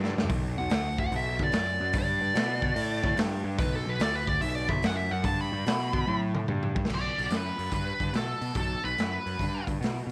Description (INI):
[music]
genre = blues rock power trio and southern rock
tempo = 145 BPM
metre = 4/4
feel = swing 67% on 8ths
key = B minor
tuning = A4 = 440 Hz
[part]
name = fuzz picked electric bass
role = bass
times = 0.0-10.1 s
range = B1 to B2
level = -34 LUFS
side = equal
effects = overdrive
[part]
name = raw garage drum kit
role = drums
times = 0.0-10.1 s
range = crash cymbal, hi-hat, kick drum, snare drum, toms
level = -33 LUFS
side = equal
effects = none
[part]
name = dark smooth lead guitar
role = second line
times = 0.6-6.2 s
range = A4 to B5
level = -33 LUFS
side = equal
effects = overdrive
[part]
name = octave-fuzz lead guitar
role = melody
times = 6.9-9.6 s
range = A4 to D5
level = -35 LUFS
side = equal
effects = wah, distortion
[sound]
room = small room ambience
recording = none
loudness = -29 LUFS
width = mono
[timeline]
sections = 0.0-6.9 A section; 6.9-10.1 B section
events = drum fill 0.0, 6.1-6.9; lead electric guitar solo 0.0-6.9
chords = 0.0 Bm; 6.9 B5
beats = | 0.29 0.70 1.12 1.53 | 1.94 2.36 2.77 3.18 | 3.60 4.01 4.42 4.83 | 5.25 5.66 6.07 6.48 | 6.90 7.31 7.73 8.14 | 8.56 8.97 9.39 9.81